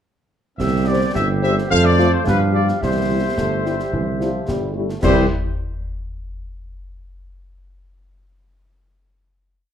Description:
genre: military-style march for wind band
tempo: 108 BPM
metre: 2/4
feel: straight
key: C major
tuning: A4 = 440 Hz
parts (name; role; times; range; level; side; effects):
- warm trumpet section; melody; 0.6-5.3 s; B4 to F5; -23 LUFS; left 1 dB; none
- dark woodwind section; second line; 0.6-5.3 s; G4 to F5; -25 LUFS; left 1 dB; none
- clear trombone section; sustained chords; 0.6-5.3 s; E3 to C4; -27 LUFS; right 1 dB; none
- mellow tuba; bass; 0.6-5.3 s; G1 to G2; -20 LUFS; right 2 dB; none
- concert snare drum, clash cymbals and concert bass drum; drums; 0.6-5.3 s; none; -27 LUFS; left 1 dB; none
- mellow French horn section; accompaniment; 0.9-5.3 s; G3 to C5; -24 LUFS; left 5 dB; none
room: moderate large studio reverb, RT60 1.2 s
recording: dark, warm production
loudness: -16 LUFS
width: side -9 dB against mid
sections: 0.6-5.0 A section; 5.0-6.1 final chord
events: none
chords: 0.6 C5; 1.7 F; 2.3 G7; 2.8 C

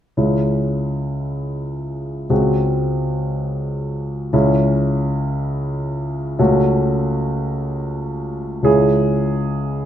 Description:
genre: classical, romantic character piece for solo piano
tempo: 49-60 BPM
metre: 2/4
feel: rubato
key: C# minor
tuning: A4 = 442 Hz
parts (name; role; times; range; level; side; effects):
- warm grand piano; solo; 0.2-9.9 s; C#2 to G#4; -17 LUFS; equal; none
room: moderate recital hall reverb, RT60 1.4 s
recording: none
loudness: -17 LUFS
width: side -10 dB against mid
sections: 0.2-8.7 A section; 8.7-9.9 B section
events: none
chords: 0.2 C#m; 2.3 G#7/C#; 4.3 C#m; 6.4 F#m/C#; 8.7 C#m

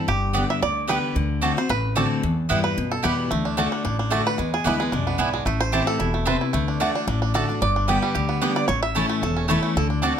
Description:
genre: bluegrass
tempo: 223 BPM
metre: 4/4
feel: swing 54% on 8ths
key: G major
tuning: A4 = 439 Hz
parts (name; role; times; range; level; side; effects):
- bluegrass banjo; melody; 0.0-10.2 s; G3 to E5; -25 LUFS; right 3 dB; none
- picked steel-string acoustic guitar; accompaniment; 0.0-10.2 s; E2 to G4; -25 LUFS; left 3 dB; none
- upright bass; bass; 0.1-10.1 s; E1 to G2; -27 LUFS; equal; none
- mandolin; stabs; 0.3-10.1 s; A3 to A5; -26 LUFS; right 4 dB; slapback echo
room: light reverb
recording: close, detailed microphones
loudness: -20 LUFS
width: side -8 dB against mid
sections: 0.0-10.2 A section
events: five-string banjo solo 0.0-10.2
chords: 0.1 G; 1.2 D7; 2.2 Em; 3.3 D; 4.4 E7; 5.5 Am; 6.5 D; 7.6 G; 8.7 A

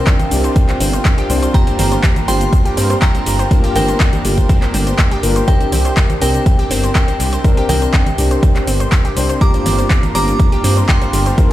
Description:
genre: progressive house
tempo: 122 BPM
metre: 4/4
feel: straight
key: unclear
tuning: A4 = 440 Hz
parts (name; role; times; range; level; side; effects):
- glassy synth bell; melody; 0.0-11.5 s; Bb4 to D6; -22 LUFS; equal; chorus, sidechain pumping, tape echo
- supersaw pad; sustained chords; 0.0-11.5 s; C3 to Bb4; -26 LUFS; right 1 dB; sidechain pumping
- felt-muted upright piano; stabs; 0.0-11.5 s; G2 to C5; -21 LUFS; left 2 dB; sidechain pumping, ping-pong delay
- analog pluck; arpeggios; 0.1-11.5 s; G3 to C5; -24 LUFS; right 1 dB; chorus, cassette tape, sidechain pumping, ping-pong delay
- deep house drum kit; drums; 0.1-11.5 s; handclaps, hi-hat, shaker; -22 LUFS; left 1 dB; overdrive
- electronic kick drum; drums; 0.1-11.5 s; none; -13 LUFS; equal; overdrive
- congas; percussion; 0.2-10.1 s; none; -24 LUFS; equal; sidechain pumping on perc
- dark detuned saw bass; bass; 0.3-11.3 s; G1 to G2; -17 LUFS; equal; sidechain pumping
room: digital ambience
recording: played on a big sound system in a bare room, stone room reverb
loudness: -12 LUFS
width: side -14 dB against mid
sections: 0.0-11.5 A section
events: none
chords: 0.0 Gm7; 5.5 Csus2; 9.4 Gm7

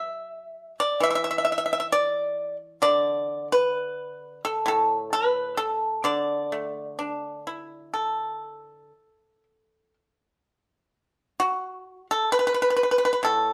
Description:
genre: chinese traditional, Chinese solo plucked strings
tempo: 58-67 BPM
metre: 4/4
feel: rubato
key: D gong mode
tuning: A4 = 440 Hz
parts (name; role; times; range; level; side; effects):
- pipa; solo; 0.0-13.5 s; A2 to E5; -25 LUFS; equal; none
room: wet studio reverb, RT60 0.7 s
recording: band playing live in one room, lossy compression artefacts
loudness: -25 LUFS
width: mono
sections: 0.0-10.4 A section; 10.4-13.5 B section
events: none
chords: none

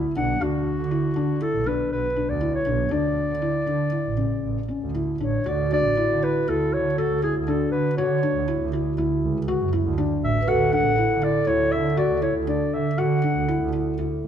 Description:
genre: contemporary instrumental, chamber music in an uneven meter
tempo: 120 BPM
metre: 5/4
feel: straight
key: D major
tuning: A4 = 440 Hz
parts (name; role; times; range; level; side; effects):
- felt-muted upright piano; arpeggios; 0.0-14.3 s; C#3 to F#4; -26 LUFS; left 5 dB; none
- muted double bass; bass; 0.0-14.3 s; A1 to D3; -25 LUFS; right 4 dB; none
- mellow clarinet; melody; 0.2-13.7 s; F#4 to F#5; -25 LUFS; left 1 dB; none
- vibraphone with soft mallets; second line; 5.5-14.3 s; F#4 to B4; -28 LUFS; right 2 dB; none
room: light reverb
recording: dark, warm production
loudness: -21 LUFS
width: side -8 dB against mid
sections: 0.0-5.5 A section; 5.5-14.3 B section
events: none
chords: 0.0 Esus2; 2.9 Dsus2; 5.5 D

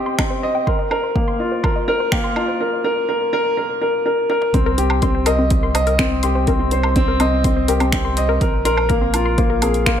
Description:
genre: piano and strings electronica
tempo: 124 BPM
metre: 4/4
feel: straight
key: C minor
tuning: A4 = 440 Hz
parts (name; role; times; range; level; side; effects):
- warbly dusty pluck; arpeggios; 0.0-10.0 s; C4 to C6; -25 LUFS; left 3 dB; chorus, sidechain pumping, tape echo
- warm upright piano; riff; 0.0-10.0 s; Bb3 to Eb5; -19 LUFS; left 1 dB; tape echo
- deep house drum kit; drums; 0.2-10.0 s; finger snaps, hi-hat, toms, woodblock; -25 LUFS; right 2 dB; high-pass filter on perc, high-pass filter on snare, high-pass filter on toms, high-pass filter on hats
- electronic kick drum; drums; 0.2-10.0 s; none; -20 LUFS; right 1 dB; none
- warm sub bass; bass; 4.5-10.0 s; Bb1 to C2; -21 LUFS; right 1 dB; sidechain pumping
room: moderate recital hall reverb, RT60 1.6 s, digital ambience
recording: none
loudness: -16 LUFS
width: side -9 dB against mid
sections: 0.0-4.5 A section; 4.5-10.0 B section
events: build-up 0.0-4.5; drum fill 4.3; drop 4.5-10.0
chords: 0.0 Cm; 0.7 Bb5; 4.5 Cm; 8.4 Bb5

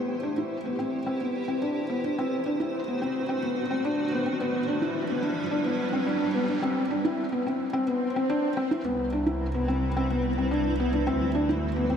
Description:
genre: piano and strings electronica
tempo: 108 BPM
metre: 4/4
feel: straight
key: unclear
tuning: A4 = 442 Hz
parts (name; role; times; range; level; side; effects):
- granular cloud pad; sustained chords; 0.0-12.0 s; G3 to C5; -32 LUFS; right 1 dB; built-in reverb, shimmer reverb
- felt-muted upright piano; riff; 0.0-12.0 s; B3 to E4; -26 LUFS; left 1 dB; tape echo, shimmer reverb
- rich chamber double bass section; bass; 0.0-12.0 s; G1 to D2; -34 LUFS; right 1 dB; high-pass filter
- riser and swell; sound effects; 2.0-8.8 s; none; -38 LUFS; right 3 dB; none
room: wet huge ambient reverb, RT60 6.3 s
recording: none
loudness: -25 LUFS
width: side -8 dB against mid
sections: 0.0-8.8 A section; 8.8-12.0 B section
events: build-up 0.0-8.8; riser 2.0-6.6; swell 7.8-8.8; drop 8.8-12.0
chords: 0.0 Cmaj7; 2.2 D7; 4.4 G6; 6.6 Bmadd11; 8.8 Cmaj7; 11.1 D7

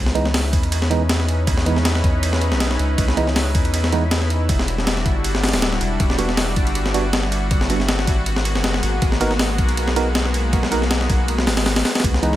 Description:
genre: drum and bass, jungle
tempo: 159 BPM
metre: 4/4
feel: swing 54% on 16ths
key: unclear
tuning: A4 = 440 Hz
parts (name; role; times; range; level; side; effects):
- lush unison pad; sustained chords; 0.0-12.4 s; E3 to B4; -25 LUFS; left 1 dB; chorus
- soft dub sub bass; bass; 0.0-12.4 s; D1 to E2; -21 LUFS; equal; none
- tine electric piano; stabs; 0.1-12.3 s; E3 to A#4; -25 LUFS; right 4 dB; medium stereo tremolo, dub echo
- breakbeat sampler-style drum kit; drums; 0.1-12.4 s; hi-hat, kick drum, ride cymbal, snare drum; -20 LUFS; equal; small room reverb
room: little or no reverb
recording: none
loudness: -16 LUFS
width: side -14 dB against mid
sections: 0.0-12.4 A section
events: none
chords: 0.0 C#m9; 4.5 Em9; 8.3 G#m9

